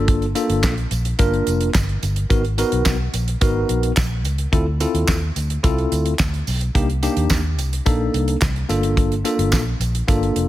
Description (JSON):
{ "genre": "early-eighties boogie funk", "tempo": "108 BPM", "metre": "4/4", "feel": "straight", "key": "unclear", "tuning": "A4 = 441 Hz", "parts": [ { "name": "tine electric piano", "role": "accompaniment", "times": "0.0-10.5 s", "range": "Bb3 to Bb4", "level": "-22 LUFS", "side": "left 1 dB", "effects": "fast stereo tremolo" }, { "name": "vintage muted fingered electric bass", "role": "bass", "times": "0.0-10.5 s", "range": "F1 to Eb2", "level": "-21 LUFS", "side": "equal", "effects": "none" }, { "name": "damped 70s drum kit", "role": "drums", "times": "0.1-10.5 s", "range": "handclaps, hi-hat, kick drum, snare drum", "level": "-21 LUFS", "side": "equal", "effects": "none" }, { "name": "tambourine", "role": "percussion", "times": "0.4-10.2 s", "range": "none", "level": "-33 LUFS", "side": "right 6 dB", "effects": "none" } ], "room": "small room ambience", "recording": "none", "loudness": "-17 LUFS", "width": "side -14 dB against mid", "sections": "0.0-10.5 A section", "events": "none", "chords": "0.0 Gm9; 2.3 Abm9; 4.5 Dm9; 6.7 Cm9; 8.7 Gm9" }